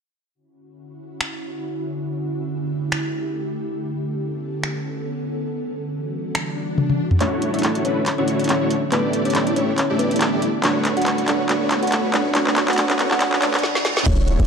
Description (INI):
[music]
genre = future bass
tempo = 140 BPM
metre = 4/4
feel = swing 56% on 16ths, half-time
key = D major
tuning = A4 = 438 Hz
[part]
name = ethereal airy pad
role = sustained chords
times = 0.8-13.6 s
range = D3 to C#5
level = -28 LUFS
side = right 1 dB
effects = ensemble chorus, built-in reverb, sidechain pumping
[part]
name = trap drum kit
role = drums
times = 1.2-14.5 s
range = crash cymbal, finger snaps, handclaps, hi-hat, snare drum, toms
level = -22 LUFS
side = equal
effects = none
[part]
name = swell, riser, reverse cymbal and impact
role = sound effects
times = 6.5-14.5 s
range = none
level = -32 LUFS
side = equal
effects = none
[part]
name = kalimba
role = melody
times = 7.2-14.5 s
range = B3 to F#5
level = -23 LUFS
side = equal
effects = sidechain pumping, ping-pong delay
[part]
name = dense compressed supersaw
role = riff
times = 7.2-14.5 s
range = A3 to D5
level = -22 LUFS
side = equal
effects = sidechain pumping, low-pass filter
[part]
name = warm 808-style bass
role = bass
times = 14.1-14.5 s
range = D1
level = -18 LUFS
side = equal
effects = sidechain pumping
[part]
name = electronic kick drum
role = drums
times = 14.1-14.2 s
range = none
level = -20 LUFS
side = equal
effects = overdrive
[sound]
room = moderate lush hall reverb, RT60 2.1 s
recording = dark, warm production, high-pass filter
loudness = -19 LUFS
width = side -6 dB against mid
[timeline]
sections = 0.3-7.2 A section; 7.2-14.1 B section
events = swell 6.5-7.2; drum fill 6.8-7.2, 7.2-13.6, 13.6-14.1; build-up 7.2-14.1; filter sweep on supersaw synth 7.2-14.1; filter sweep 7.2-14.1; reverse cymbal 13.2-14.1; impact 14.1-14.5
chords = 0.3 Dmaj9; 2.1 A7sus4; 3.8 Bm9; 5.5 Em9; 7.2 Dmaj9; 8.9 A7sus4; 10.6 Bm9; 12.3 Em9